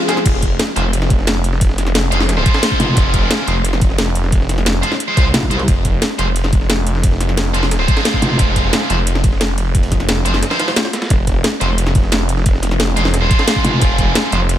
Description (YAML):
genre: dark technical drum and bass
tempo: 177 BPM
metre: 4/4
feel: straight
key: F minor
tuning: A4 = 440 Hz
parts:
  - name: heavy high-gain guitar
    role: stabs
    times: 0.1-14.4 s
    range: Ab3 to C5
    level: -20 LUFS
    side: right 1 dB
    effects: distortion, ping-pong delay
  - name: breakbeat sampler-style drum kit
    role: drums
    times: 0.1-14.6 s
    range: ride cymbal, snare drum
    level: -26 LUFS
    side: right 1 dB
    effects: high-pass filter on cymbals, high-pass filter on snare
  - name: drum and bass drum kit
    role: drums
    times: 0.1-14.6 s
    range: crash cymbal, hi-hat, snare drum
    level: -19 LUFS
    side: left 1 dB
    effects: none
  - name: snarling distorted saw bass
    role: bass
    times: 0.3-14.6 s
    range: F1 to C2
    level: -17 LUFS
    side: equal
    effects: none
  - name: electronic kick drum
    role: drums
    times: 0.3-14.1 s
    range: none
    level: -15 LUFS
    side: equal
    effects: none
  - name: metallic wobble bass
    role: bass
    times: 2.8-3.0, 5.3-5.7, 8.2-8.4, 13.6-13.8 s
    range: F1 to C2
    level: -16 LUFS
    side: equal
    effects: distortion, chorus
room: little or no reverb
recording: none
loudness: -13 LUFS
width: side -11 dB against mid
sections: 0.3-14.6 A section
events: break 0.0; drop 0.3-14.6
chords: 0.3 Fm